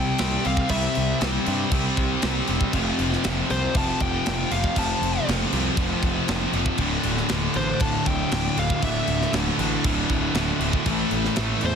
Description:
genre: heavy metal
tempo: 118 BPM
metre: 4/4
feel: straight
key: D minor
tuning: A4 = 439 Hz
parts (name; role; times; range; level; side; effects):
- high-gain lead guitar; melody; 0.0-11.8 s; C5 to A5; -30 LUFS; left 2 dB; distortion, ping-pong delay
- heavy high-gain guitar; riff; 0.0-11.8 s; D2 to C4; -27 LUFS; right 13 dB; distortion
- scooped high-gain guitar; riff; 0.0-11.8 s; D2 to C4; -27 LUFS; left 12 dB; distortion
- fuzz picked electric bass; bass; 0.0-11.8 s; D1 to G2; -28 LUFS; equal; overdrive
- tight metal drum kit; drums; 0.2-11.7 s; crash cymbal, kick drum, snare drum; -28 LUFS; equal; none
- fuzz guitar; riff; 6.8-11.8 s; D2 to A3; -28 LUFS; left 1 dB; distortion
room: small room ambience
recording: dense, heavily limited modern master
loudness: -21 LUFS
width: side -7 dB against mid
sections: 0.0-11.8 A section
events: none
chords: 0.0 C5; 2.7 F5; 6.8 D5; 10.9 A5

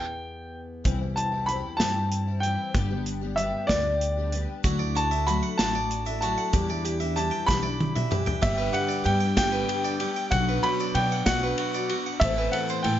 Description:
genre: indie folk with a building arrangement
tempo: 63 BPM (dotted quarters)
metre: 6/8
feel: straight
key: G major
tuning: A4 = 440 Hz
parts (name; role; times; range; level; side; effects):
- bright upright piano; melody; 0.0-13.0 s; D5 to B5; -28 LUFS; equal; plate reverb
- fingerpicked plugged-in steel-string acoustic guitar; accompaniment; 0.0-1.8 s; E2 to B3; -41 LUFS; left 2 dB; none
- picked twelve-string acoustic guitar; accompaniment; 0.8-13.0 s; E2 to G4; -31 LUFS; left 4 dB; ensemble chorus
- upright bass; bass; 0.8-13.0 s; G1 to B2; -29 LUFS; equal; none
- natural country drum kit; drums; 0.9-13.0 s; hi-hat, kick drum, ride cymbal, snare drum, toms; -29 LUFS; equal; none
- harpsichord; arpeggios; 4.6-13.0 s; F#3 to G5; -30 LUFS; right 4 dB; none
- egg shaker; percussion; 4.6-12.8 s; none; -46 LUFS; left 9 dB; none
room: moderate large studio reverb, RT60 0.9 s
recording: nothing above 7.6 kHz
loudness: -23 LUFS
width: side -11 dB against mid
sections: 0.8-8.4 A section; 8.4-13.0 B section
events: stop 0.0-0.8; drum fill 7.5-8.4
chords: 0.0 Em; 0.8 C; 2.7 G; 4.6 Dadd9; 6.5 Em7; 8.4 G; 10.3 Bm; 12.2 Amadd9

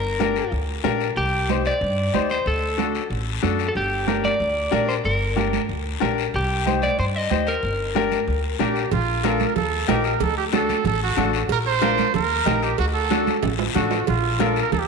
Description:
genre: latin, cumbia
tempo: 186 BPM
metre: 4/4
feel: straight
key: G minor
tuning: A4 = 436 Hz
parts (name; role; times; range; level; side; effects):
- electric guitar at the edge of break-up; melody; 0.0-8.6 s; G4 to Eb5; -25 LUFS; left 1 dB; spring reverb
- upright bass; bass; 0.0-14.9 s; G1 to G2; -26 LUFS; equal; none
- bright upright piano; accompaniment; 0.2-14.6 s; D4 to C5; -26 LUFS; left 9 dB; none
- congas; percussion; 0.2-14.9 s; none; -27 LUFS; right 14 dB; none
- guiro; percussion; 0.2-14.9 s; none; -31 LUFS; left 12 dB; none
- clear trumpet; second line; 8.6-14.9 s; F4 to C5; -24 LUFS; right 7 dB; none
- cowbell and timbales; percussion; 8.9-14.9 s; none; -31 LUFS; right 12 dB; none
room: wet echo chamber reverb, RT60 2.1 s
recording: 1960s-style stereo with parts hard left and right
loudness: -19 LUFS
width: side -4 dB against mid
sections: 0.0-8.9 A section; 8.9-14.9 B section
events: trumpet solo 8.9-14.9; drum fill 13.4-14.1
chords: 0.0 Gm; 1.2 Cm; 2.5 D; 3.8 Gm; 6.3 Cm; 7.6 Gm; 8.9 Bb; 9.6 Eb; 10.2 D; 11.5 Bb; 12.1 Eb; 12.8 D; 14.1 Bb

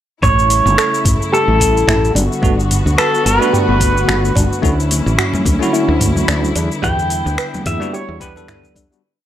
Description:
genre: sunset chillout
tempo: 109 BPM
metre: 4/4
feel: swing 56% on 16ths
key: E dorian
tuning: A4 = 440 Hz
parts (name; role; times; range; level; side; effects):
- pedal steel guitar; melody; 0.2-8.7 s; A4 to G5; -17 LUFS; right 1 dB; analog delay
- dark studio string section; sustained chords; 0.2-9.0 s; C#3 to F#4; -21 LUFS; left 2 dB; none
- woody fretless electric bass; bass; 0.2-8.9 s; G1 to E2; -17 LUFS; equal; none
- electronic kick drum; drums; 0.2-8.9 s; none; -19 LUFS; equal; small room ambience
- smooth R&B drum kit; drums; 0.2-9.0 s; finger snaps, hi-hat, shaker, toms; -19 LUFS; equal; small room ambience
- soft round pluck; arpeggios; 0.8-9.0 s; D4 to B4; -24 LUFS; right 3 dB; chorus, analog delay
- barky tine electric piano; accompaniment; 2.4-9.0 s; G3 to A4; -22 LUFS; moving between left 5 dB and right 6 dB; fast stereo tremolo, auto-pan, analog delay
- congas; percussion; 4.9-8.7 s; none; -24 LUFS; left 2 dB; none
room: light reverb, digital ambience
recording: dry, gritty hardware recording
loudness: -12 LUFS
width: side -11 dB against mid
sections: 0.2-9.0 groove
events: fade-out 6.1-9.0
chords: 0.2 A7; 2.2 Gmaj7; 4.6 Dmaj9; 6.6 Em7

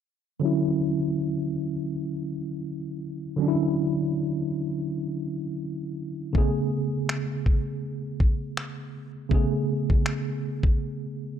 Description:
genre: contemporary R&B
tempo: 81 BPM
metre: 4/4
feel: swing 58% on 16ths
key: D lydian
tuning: A4 = 441 Hz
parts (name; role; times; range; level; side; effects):
- tine electric piano; accompaniment; 0.4-11.4 s; C#3 to G#4; -26 LUFS; equal; overdrive, fast stereo tremolo, low-pass filter
- dusty soul sampler-style drum kit; drums; 6.3-10.8 s; finger snaps, kick drum; -23 LUFS; equal; none
room: light reverb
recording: dark, warm production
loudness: -25 LUFS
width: side -9 dB against mid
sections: 0.4-11.4 A section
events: filter sweep on tine electric piano 0.4-11.4; break 10.8-11.4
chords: 0.4 Dmaj9; 6.3 Amaj9

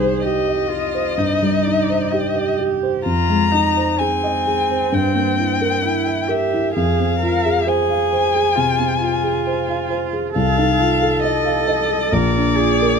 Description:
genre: classical, slow romantic movement for piano trio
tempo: 66 BPM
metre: 4/4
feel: rubato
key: unclear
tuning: A4 = 436 Hz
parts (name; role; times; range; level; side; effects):
- warm violin; melody; 0.0-13.0 s; C5 to Bb5; -20 LUFS; left 6 dB; none
- warm cello; second line; 0.0-13.0 s; C4 to Bb4; -22 LUFS; right 8 dB; none
- dark concert grand piano; accompaniment; 0.0-13.0 s; Bb1 to F5; -19 LUFS; equal; none
room: light reverb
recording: minimal, uncompressed stereo recording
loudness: -16 LUFS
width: side -6 dB against mid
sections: 0.0-13.0 A section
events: none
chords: 0.0 Cm; 3.0 Fm7; 4.9 Edim/G; 6.7 Fm; 10.3 F7/C; 12.1 Bb

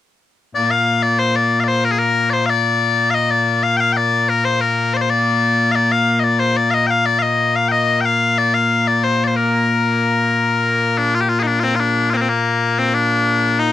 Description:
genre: scottish traditional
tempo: 92 BPM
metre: 2/4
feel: straight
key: Bb major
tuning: A4 = 440 Hz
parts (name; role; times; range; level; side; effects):
- loud bright bagpipes; solo; 0.6-13.7 s; Bb2 to G5; -14 LUFS; left 2 dB; cassette tape
room: wet booth ambience, RT60 0.2 s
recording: home recording on cassette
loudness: -14 LUFS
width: side -12 dB against mid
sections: 0.5-11.0 A section; 11.0-13.7 A section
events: none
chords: none

